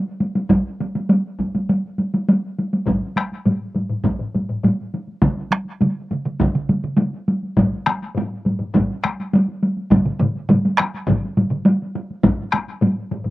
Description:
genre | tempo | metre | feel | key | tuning
japanese traditional, taiko drum ensemble | 102 BPM | 4/4 | straight | none | none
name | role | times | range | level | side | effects
taiko ensemble | percussion | 0.2-13.3 s | none | -18 LUFS | equal | none
taiko ensemble | percussion | 0.5-12.4 s | none | -22 LUFS | equal | none
taiko ensemble | percussion | 2.9-13.3 s | none | -24 LUFS | left 3 dB | none
taiko ensemble | percussion | 5.2-11.6 s | none | -22 LUFS | right 2 dB | none
room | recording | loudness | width
little or no reverb | recorded outdoors, with no room sound | -18 LUFS | side -17 dB against mid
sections
0.0-2.9 A section; 2.9-13.3 B section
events
none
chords
none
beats
| 0.50 1.09 1.69 2.28 | 2.87 3.46 4.05 4.64 | 5.22 5.81 6.40 6.99 | 7.57 8.16 8.74 9.32 | 9.91 10.49 11.07 11.65 | 12.23 12.81

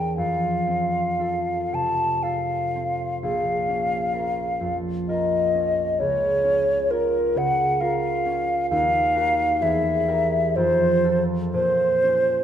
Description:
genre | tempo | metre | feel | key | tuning
classical, romantic duo for flute and harp | 53-68 BPM | 3/4 | rubato | Bb minor | A4 = 442 Hz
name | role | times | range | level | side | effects
mellow hollow silver concert flute | melody | 0.0-12.4 s | Bb4 to A5 | -21 LUFS | left 1 dB | none
concert harp | accompaniment | 0.0-12.4 s | Bb1 to Bb4 | -26 LUFS | right 2 dB | none
room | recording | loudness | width
moderate concert hall reverb, RT60 2.0 s | minimal, uncompressed stereo recording | -20 LUFS | side -9 dB against mid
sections
0.0-12.4 A section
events
none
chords
0.2 F; 3.2 Bbm; 6.0 Bbm/Db; 8.7 Ebmadd9; 9.6 Edim; 10.6 F; 11.5 Bbm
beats
| 0.18 1.21 2.23 | 3.22 4.15 5.09 | 6.01 6.92 7.83 | 8.72 9.62 10.56 | 11.53

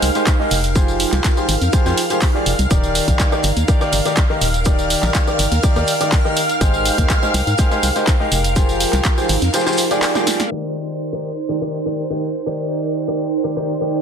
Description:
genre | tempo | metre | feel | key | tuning
piano house | 123 BPM | 4/4 | straight | Eb major | A4 = 440 Hz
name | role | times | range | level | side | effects
string machine, violins | sustained chords | 0.0-14.0 s | C5 to F6 | -25 LUFS | equal | ensemble chorus, sidechain pumping
clear upright piano | riff | 0.0-14.0 s | Eb3 to Eb5 | -21 LUFS | left 1 dB | sidechain pumping, tape echo
organ-like FM bass | bass | 0.0-9.5 s | Eb1 to Ab2 | -19 LUFS | equal | sidechain pumping
big rock drum kit | drums | 0.0-10.4 s | hi-hat, shaker, snare drum | -32 LUFS | left 1 dB | none
punchy analog drum machine | drums | 0.0-14.0 s | handclaps, hi-hat, snare drum, tambourine | -22 LUFS | right 1 dB | low-pass filter on hats, low-pass filter on perc, low-pass filter on snare
granular cloud pad | texture | 0.0-14.0 s | Eb4 to G5 | -25 LUFS | right 4 dB | built-in reverb, sidechain pumping
electronic kick drum | drums | 0.3-9.2 s | none | -16 LUFS | equal | none
room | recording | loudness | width
light reverb, small room ambience | dense, heavily limited modern master, low-pass filter | -15 LUFS | side -7 dB against mid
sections
0.0-10.5 A section; 10.5-14.0 B section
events
drum fill 10.1-10.5; filter sweep on drum 10.5-14.0; filter sweep 10.5-14.0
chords
0.0 Abmaj7; 0.8 Fmadd9; 2.7 Ebmaj7; 6.6 Abmaj7; 8.6 Fmadd9; 10.5 Ebmaj7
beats
0.27 | 0.76 1.24 1.73 2.22 | 2.71 3.19 3.68 4.17 | 4.66 5.15 5.63 6.12 | 6.61 7.10 7.58 8.07 | 8.56 9.05 9.54 10.02 | 10.51 11.00 11.49 11.98 | 12.46 12.95 13.44 13.93

